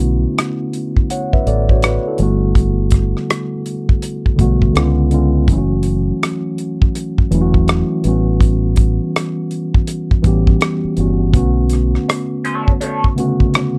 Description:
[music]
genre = R&B, neo-soul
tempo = 82 BPM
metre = 4/4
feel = swing 63% on 16ths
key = B minor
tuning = A4 = 435 Hz
[part]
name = mellow tine electric piano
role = accompaniment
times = 0.0-13.8 s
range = C#3 to F#5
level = -20 LUFS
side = equal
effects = none
[part]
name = deep dub fingered electric bass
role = bass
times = 0.0-12.0 s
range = E1 to C#2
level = -19 LUFS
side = equal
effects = none
[part]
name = damped 70s drum kit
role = drums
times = 0.4-13.8 s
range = hi-hat, kick drum, rim click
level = -17 LUFS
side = equal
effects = none
[part]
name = electric guitar through a small old amp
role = second line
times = 12.1-13.6 s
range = D4 to C#5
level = -24 LUFS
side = equal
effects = wah, lush chorus
[sound]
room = little or no reverb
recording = dark, warm production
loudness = -16 LUFS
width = mono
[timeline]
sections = 0.0-13.8 A section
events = none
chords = 0.0 Bm9; 2.2 Gmaj9; 4.7 C#7b9; 5.5 F#m7; 8.0 A13; 11.3 Bm9

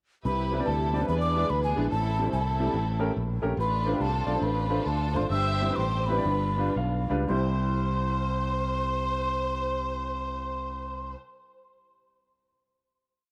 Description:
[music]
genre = uptempo gospel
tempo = 108-145 BPM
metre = 4/4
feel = swing 65% on 8ths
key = C major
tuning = A4 = 440 Hz
[part]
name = warm studio string section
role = melody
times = 0.2-11.1 s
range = B3 to E5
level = -35 LUFS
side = equal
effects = none
[part]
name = clear upright piano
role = accompaniment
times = 0.2-11.2 s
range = C2 to F5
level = -34 LUFS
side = equal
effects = none
[part]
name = fingered electric bass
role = bass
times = 0.2-11.1 s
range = G1 to E2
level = -32 LUFS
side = equal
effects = none
[part]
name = breathy alto ocarina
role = melody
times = 0.3-11.1 s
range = G#5 to E6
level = -34 LUFS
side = equal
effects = none
[sound]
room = light reverb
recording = none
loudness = -28 LUFS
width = mono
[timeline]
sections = 0.2-7.3 breakdown; 7.3-11.7 final chord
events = slowing down 3.6-7.3; upright piano fill 6.5-7.3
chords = 0.2 Cmaj7; 1.1 E7; 1.9 Am7; 2.7 A7b9; 3.6 Dm7/A; 5.3 C/G; 6.2 G7; 7.3 C

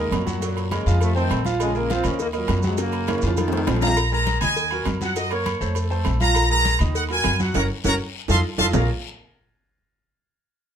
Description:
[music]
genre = latin, salsa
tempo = 202 BPM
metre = 4/4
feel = straight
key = Bb minor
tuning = A4 = 440 Hz
[part]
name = bright trombone section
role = melody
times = 0.0-3.3 s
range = Bb2 to Db4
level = -27 LUFS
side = left 1 dB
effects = none
[part]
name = clear concert grand piano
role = accompaniment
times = 0.0-8.9 s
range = Eb3 to Gb5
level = -27 LUFS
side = right 3 dB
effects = none
[part]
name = upright bass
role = bass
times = 0.0-8.9 s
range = Gb1 to Gb2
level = -24 LUFS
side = equal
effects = none
[part]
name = congas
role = percussion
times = 0.1-8.8 s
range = none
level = -30 LUFS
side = left 2 dB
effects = none
[part]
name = cowbell and bongos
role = percussion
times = 0.1-8.8 s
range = none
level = -32 LUFS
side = left 5 dB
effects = none
[part]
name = guiro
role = percussion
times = 0.1-8.8 s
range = none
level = -38 LUFS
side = left 8 dB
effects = none
[part]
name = maracas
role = percussion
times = 0.1-8.8 s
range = none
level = -40 LUFS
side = right 8 dB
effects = none
[part]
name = timbales and agogo bells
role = percussion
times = 0.1-8.8 s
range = none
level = -30 LUFS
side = right 7 dB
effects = none
[part]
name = breathy baritone saxophone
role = second line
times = 3.1-4.0 s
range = Db3 to F3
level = -28 LUFS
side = left 6 dB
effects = none
[part]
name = clear horn section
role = melody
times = 3.8-8.9 s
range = Db5 to C6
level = -22 LUFS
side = equal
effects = none
[sound]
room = moderate studio reverb, RT60 0.8 s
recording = minimal, uncompressed stereo recording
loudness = -19 LUFS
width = side -8 dB against mid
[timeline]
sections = 0.0-4.0 A section; 4.0-8.7 B section; 8.7-9.9 C section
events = drum fill 2.8-4.0, 7.8-8.7; band accent 7.5-8.7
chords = 0.4 Gb; 1.0 F7; 1.6 Bbm7; 2.2 Ebm; 2.8 Gb; 3.4 F7; 4.0 Bb7sus4; 4.6 Ebm; 5.2 Gb; 5.8 F; 6.4 Bb5; 7.0 Ebm; 7.5 Gb; 8.1 F7; 8.7 Bbm7

